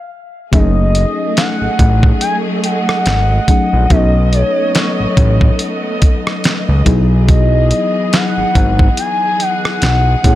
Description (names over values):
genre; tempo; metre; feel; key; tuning
contemporary R&B; 71 BPM; 4/4; swing 58% on 16ths; F# dorian; A4 = 440 Hz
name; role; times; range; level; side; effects
gliding portamento lead; melody; 0.0-10.4 s; C#5 to G#5; -18 LUFS; equal; chorus, ping-pong delay
mellow FM electric piano; accompaniment; 0.5-10.4 s; F#3 to A4; -19 LUFS; left 3 dB; chorus
warm studio string section; sustained chords; 0.5-10.4 s; E3 to D#5; -22 LUFS; right 1 dB; sidechain pumping
fat analog bass; bass; 0.5-10.4 s; F#1 to C#2; -13 LUFS; equal; none
dusty soul sampler-style drum kit; drums; 0.5-10.4 s; hi-hat, kick drum, rim click, snare drum; -13 LUFS; equal; none
room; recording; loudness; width
digital ambience; none; -11 LUFS; side -14 dB against mid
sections
0.5-10.4 A section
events
stop 0.0-0.5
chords
0.0 N.C.; 0.5 F#m69; 3.9 B9; 6.9 Emaj9